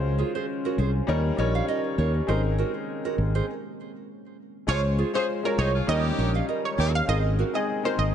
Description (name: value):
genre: afrobeats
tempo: 100 BPM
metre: 4/4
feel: swing 55% on 16ths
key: Db major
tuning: A4 = 440 Hz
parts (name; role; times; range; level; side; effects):
- clear baby grand piano; accompaniment; 0.0-8.1 s; G3 to Db5; -30 LUFS; left 6 dB; none
- deep dark ambient pad; sustained chords; 0.0-8.1 s; Eb3 to C5; -36 LUFS; right 1 dB; chorus, built-in reverb
- fingered electric bass; bass; 0.0-8.1 s; Ab1 to Eb2; -24 LUFS; equal; none
- nylon-string guitar; riff; 0.2-8.0 s; F4 to F5; -32 LUFS; right 10 dB; digital delay
- analog pluck; melody; 4.7-8.1 s; Bb4 to F5; -28 LUFS; right 3 dB; chorus, digital delay
- clear horn section; second line; 4.7-6.9 s; F3 to Ab4; -34 LUFS; left 2 dB; none
room: light reverb, small room ambience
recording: nothing above 10.3 kHz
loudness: -23 LUFS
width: side -9 dB against mid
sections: 0.0-4.7 A section; 4.7-8.1 B section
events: stop 3.5-4.7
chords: 0.0 Dbmaj7; 1.1 Eb7; 2.3 Abadd9; 3.5 N.C.; 4.7 Dbmaj7; 5.9 Eb7; 7.1 Abadd9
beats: 0.48 1.08 1.68 | 2.28 2.88 3.48 4.08 | 4.68 5.28 5.88 6.48 | 7.08 7.68